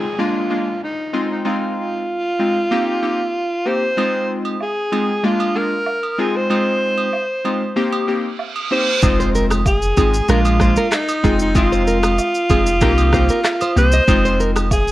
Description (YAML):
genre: afrobeats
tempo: 95 BPM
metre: 4/4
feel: straight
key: F dorian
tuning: A4 = 440 Hz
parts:
  - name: breathy alto saxophone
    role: melody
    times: 0.0-14.9 s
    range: Eb4 to C5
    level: -20 LUFS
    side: equal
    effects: none
  - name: warm analog keys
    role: accompaniment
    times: 0.0-14.7 s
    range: Ab3 to G4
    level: -20 LUFS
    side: left 1 dB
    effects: chorus
  - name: downlifter, reverse cymbal and impact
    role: sound effects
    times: 0.0-11.6 s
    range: none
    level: -28 LUFS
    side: right 3 dB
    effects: none
  - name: agogo bells and woodblock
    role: percussion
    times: 4.0-14.9 s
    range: none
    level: -27 LUFS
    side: right 4 dB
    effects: none
  - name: punchy sub bass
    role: bass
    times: 9.0-14.9 s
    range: F1 to C2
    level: -18 LUFS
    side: equal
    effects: none
  - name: afro-pop drum kit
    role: drums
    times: 9.0-14.9 s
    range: handclaps, kick drum, rim click, shaker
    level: -19 LUFS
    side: equal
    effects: none
  - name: nylon-string guitar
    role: riff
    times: 9.2-14.5 s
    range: Ab4 to Eb5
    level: -24 LUFS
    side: right 2 dB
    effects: tape echo
room: light reverb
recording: worn, warbling old tape, cassette tape, warbly pitch drift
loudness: -15 LUFS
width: side -16 dB against mid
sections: 0.0-9.0 A section; 9.0-14.9 B section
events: reverse cymbal 8.3-9.0; impact 9.0-11.6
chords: 0.2 Bb7; 1.1 Fm7; 2.7 Cm7; 4.0 Fm7; 5.2 Bb7; 6.2 Fm7; 7.8 Cm7; 9.0 Fm7; 10.3 Bb7; 11.2 Fm7; 12.8 Cm7; 14.1 Fm7